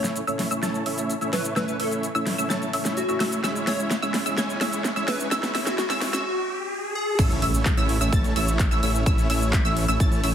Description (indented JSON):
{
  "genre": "EDM, festival progressive house",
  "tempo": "128 BPM",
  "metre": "4/4",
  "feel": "straight",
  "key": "A major",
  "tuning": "A4 = 441 Hz",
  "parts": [
    { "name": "plucky unison lead", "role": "melody", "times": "0.0-7.2 s", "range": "F#4 to C#5", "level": "-30 LUFS", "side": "left 2 dB", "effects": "tape echo" },
    { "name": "wide unison pluck", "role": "arpeggios", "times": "0.0-10.3 s", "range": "E6 to A6", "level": "-30 LUFS", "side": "right 1 dB", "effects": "lush chorus, sidechain pumping, tape echo" },
    { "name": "dense compressed supersaw", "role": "riff", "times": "0.0-10.3 s", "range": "G#3 to A5", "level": "-27 LUFS", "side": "right 1 dB", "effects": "sidechain pumping, low-pass filter, tape echo" },
    { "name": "big-room dance drum kit", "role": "drums", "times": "0.0-10.3 s", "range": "crash cymbal, handclaps, hi-hat, shaker, snare drum", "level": "-28 LUFS", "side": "equal", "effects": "overdrive, small room reverb" },
    { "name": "riser and impact", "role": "sound effects", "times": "1.3-9.1 s", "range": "none", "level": "-35 LUFS", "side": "equal", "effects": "none" },
    { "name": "wide detuned saw bass", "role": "bass", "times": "7.2-10.3 s", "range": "A1", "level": "-25 LUFS", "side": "equal", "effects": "chorus, sidechain pumping" },
    { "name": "electronic kick drum", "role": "drums", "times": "7.2-10.1 s", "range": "none", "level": "-22 LUFS", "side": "equal", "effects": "small room reverb" }
  ],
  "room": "moderate lush hall reverb, RT60 1.6 s, digital ambience",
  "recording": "heavily compressed radio sound, multiband compression, high-pass filter",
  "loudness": "-21 LUFS",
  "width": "side -9 dB against mid",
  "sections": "0.0-7.2 A section; 7.2-10.3 B section",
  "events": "build-up 0.0-7.2; drum fill 0.0-6.3; filter sweep on supersaw synth 0.0-7.2; filter sweep on synth pluck 0.0-7.2; drop 7.2-10.3; impact 7.2-9.1",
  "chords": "0.0 A; 3.4 C#m; 7.2 A",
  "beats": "0.16 0.63 1.09 | 1.56 2.03 2.50 2.97 | 3.44 3.91 4.38 4.84 | 5.31 5.78 6.25 6.72 | 7.19 7.66 8.13 8.60 | 9.06 9.53 10.00"
}